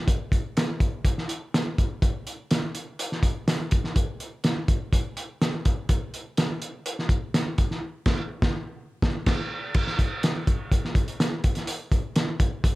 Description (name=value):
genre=soul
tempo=124 BPM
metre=4/4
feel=straight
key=none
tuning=none
part: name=cloth-damped thuddy drum kit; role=drums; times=0.1-12.8 s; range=crash cymbal, hi-hat, kick drum, snare drum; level=-23 LUFS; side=equal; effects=none
room=light reverb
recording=none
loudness=-24 LUFS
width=side -19 dB against mid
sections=0.0-9.8 A section; 9.8-12.8 B section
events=band accent 7.8-9.8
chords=none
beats=| 0.08 0.56 1.05 1.53 | 2.02 2.50 2.99 3.47 | 3.96 4.44 4.92 5.41 | 5.89 6.38 6.86 7.34 | 7.82 8.31 8.79 9.27 | 9.75 10.23 10.72 11.20 | 11.68 12.16 12.64